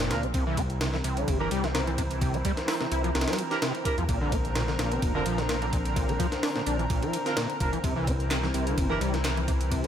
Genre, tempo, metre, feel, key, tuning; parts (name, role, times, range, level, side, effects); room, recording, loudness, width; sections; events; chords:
breakbeat, breaks; 128 BPM; 4/4; swing 54% on 16ths; C mixolydian; A4 = 440 Hz
overdriven acid bass; riff; 0.0-9.9 s; Bb2 to E4; -31 LUFS; equal; distortion, analog chorus, ping-pong delay
dark detuned saw bass; bass; 0.0-9.9 s; F1 to E2; -30 LUFS; equal
breakbeat sampler-style drum kit; drums; 0.0-9.9 s; hi-hat, kick drum, ride cymbal, snare drum; -30 LUFS; equal
warm horn section; stabs; 0.1-9.0 s; C4 to Bb4; -35 LUFS; right 3 dB; vintage 12-bit sampler grit, ping-pong delay
punchy analog drum machine; drums; 0.1-9.8 s; handclaps, hi-hat; -39 LUFS; equal
lush unison pad; sustained chords; 0.3-9.9 s; D3 to Bb4; -33 LUFS; equal; chorus, sidechain pumping
light reverb; -25 LUFS; side -9 dB against mid
0.0-9.9 A section
0.3 C7; 4.1 Bbadd9; 7.8 C7